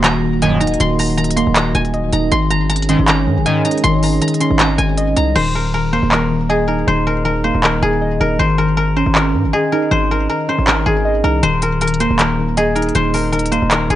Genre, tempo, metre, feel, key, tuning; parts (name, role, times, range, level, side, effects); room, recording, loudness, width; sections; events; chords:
hip hop, trap; 158 BPM; 4/4; half-time; Eb dorian; A4 = 438 Hz
guzheng; melody; 0.0-14.0 s; Ab4 to C6; -19 LUFS; left 2 dB
muted felt-like synth keys; accompaniment; 0.0-14.0 s; Eb3 to Eb5; -18 LUFS; equal; chorus
dark analog pad; sustained chords; 0.0-5.3 s; Eb3 to Ab4; -24 LUFS; right 3 dB; chorus, phaser
distorted 808-style bass; bass; 0.0-14.0 s; Eb1 to Ab2; -19 LUFS; equal; distortion
trap drum kit; drums; 0.0-14.0 s; crash cymbal, handclaps, hi-hat; -19 LUFS; equal
resonant sweep polysynth; stabs; 0.4-0.6, 2.9-3.6 s; Bb1 to Eb3; -19 LUFS; equal; chorus
digital ambience; worn, warbling old tape, cassette tape, warbly pitch drift, nothing above 10.5 kHz; -13 LUFS; side -13 dB against mid
0.0-5.4 A section; 5.4-14.0 B section
hi-hats muted 5.4-11.4
0.0 Ebm; 2.3 Absus4; 5.4 Eb5; 8.4 Absus4; 11.4 Eb5